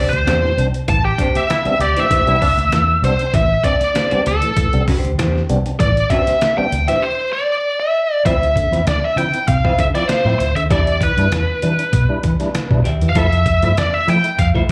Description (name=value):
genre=funk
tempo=98 BPM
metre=4/4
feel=straight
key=A minor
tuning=A4 = 437 Hz
part: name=biting lead guitar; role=melody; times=0.0-14.5 s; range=A4 to A5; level=-20 LUFS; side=equal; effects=overdrive, slapback echo
part: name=semi-hollow electric guitar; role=accompaniment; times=0.0-14.7 s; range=D4 to F5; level=-27 LUFS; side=equal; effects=tremolo, slapback echo
part: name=tonewheel organ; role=stabs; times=0.0-14.6 s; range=A2 to E4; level=-27 LUFS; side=equal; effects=overdrive, fast rotary speaker, slapback echo
part: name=vintage muted fingered electric bass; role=bass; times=0.1-14.7 s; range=A1 to F3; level=-20 LUFS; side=equal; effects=none
part: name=trip hop sampler-style drum kit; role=drums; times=0.1-14.7 s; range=hi-hat, kick drum, snare drum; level=-23 LUFS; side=equal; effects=none
part: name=bright trombone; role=second line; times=1.0-2.5, 13.2-13.3 s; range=D4 to A4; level=-27 LUFS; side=equal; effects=slapback echo
room=light reverb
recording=live gig heard through the venue's PA, club reverb, vinyl crackle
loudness=-16 LUFS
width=mono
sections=0.0-8.3 A section; 8.3-14.7 B section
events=lead electric guitar solo 0.0-8.3; break 7.0-8.3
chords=0.0 Am11; 8.3 Dm9; 10.7 Em7; 13.2 Fmaj7